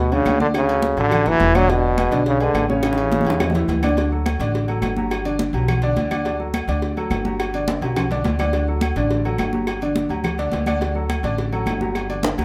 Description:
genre	latin, salsa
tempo	210 BPM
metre	4/4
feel	straight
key	D major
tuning	A4 = 441 Hz
part	clear trombone	melody	0.0-3.7 s	B2 to F#3	-21 LUFS	equal	none
part	clear upright piano	accompaniment	0.0-12.4 s	C#3 to D5	-26 LUFS	equal	none
part	upright bass	bass	0.0-12.4 s	E1 to E2	-26 LUFS	equal	none
part	agogo bells and timbales	percussion	0.1-12.4 s	none	-32 LUFS	equal	none
part	congas	percussion	0.1-12.4 s	none	-29 LUFS	equal	none
part	claves	percussion	0.3-12.1 s	none	-38 LUFS	equal	none
part	cowbell and bongos	percussion	0.3-12.4 s	none	-31 LUFS	equal	none
room	moderate large studio reverb, RT60 0.9 s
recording	none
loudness	-20 LUFS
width	mono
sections	0.0-4.0 A section; 4.0-12.4 B section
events	drum fill 2.8-4.0, 7.7-8.5, 12.2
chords	0.0 Gmaj7 (rootless); 0.5 Dmaj9; 1.7 E7; 2.8 A7; 4.0 D; 5.1 Gmaj7; 6.3 D; 7.4 Gmaj7; 8.5 D; 9.7 G5; 10.8 D

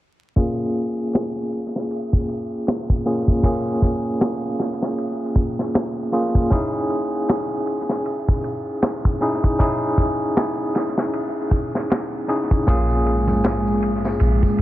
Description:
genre	trip hop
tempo	78 BPM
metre	4/4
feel	swing 59% on 16ths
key	Bb minor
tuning	A4 = 439 Hz
part	overdriven tine electric piano	accompaniment	0.4-14.6 s	Bb3 to Ab4	-22 LUFS	equal	tremolo, tape echo
part	modern studio drum kit	drums	0.4-14.6 s	kick drum, ride cymbal, snare drum	-22 LUFS	equal	low-pass filter on kick, low-pass filter on cymbals, low-pass filter on snare, low-pass filter on room
part	dark analog pad	sustained chords	12.7-14.6 s	Ab3 to Ab4	-23 LUFS	right 1 dB	chorus
part	soft 808-style bass	bass	12.7-14.6 s	Bb1	-20 LUFS	equal	tube saturation
part	tambourine and congas	percussion	12.7-14.6 s	none	-30 LUFS	right 1 dB	dub echo
room	light reverb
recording	echo-heavy mix, vinyl crackle, low-pass filter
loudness	-19 LUFS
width	side -15 dB against mid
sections	0.4-14.6 A section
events	filter sweep 0.4-14.6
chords	0.4 Bbm7; 6.5 Dbmadd9; 12.7 Bbm7

